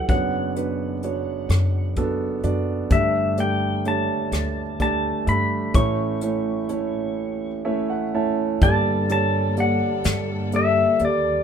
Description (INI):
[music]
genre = acoustic folk-pop ballad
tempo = 42 BPM (dotted quarters)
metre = 6/8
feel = straight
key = unclear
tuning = A4 = 440 Hz
[part]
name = pedal steel guitar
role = melody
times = 0.0-11.4 s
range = D5 to C#6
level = -24 LUFS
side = left 3 dB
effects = none
[part]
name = warm concert grand piano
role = accompaniment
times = 0.0-11.4 s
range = F#1 to A5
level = -24 LUFS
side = right 3 dB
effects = none
[part]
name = upright bass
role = bass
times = 0.1-11.4 s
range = D2 to A2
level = -25 LUFS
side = equal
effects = none
[part]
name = soft brush drum kit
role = drums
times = 0.1-11.2 s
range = hi-hat, kick drum, rim click, snare drum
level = -23 LUFS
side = left 1 dB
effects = none
[part]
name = warm symphonic string section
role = sustained chords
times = 8.6-11.4 s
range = G3 to A4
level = -32 LUFS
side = left 1 dB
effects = none
[sound]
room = light reverb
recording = minimal, uncompressed stereo recording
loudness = -20 LUFS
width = side -7 dB against mid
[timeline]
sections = 0.0-8.6 A section; 8.6-11.4 B section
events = none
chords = 0.1 Bmadd9/F#; 2.9 Gsus2; 5.7 A; 8.6 Gmadd9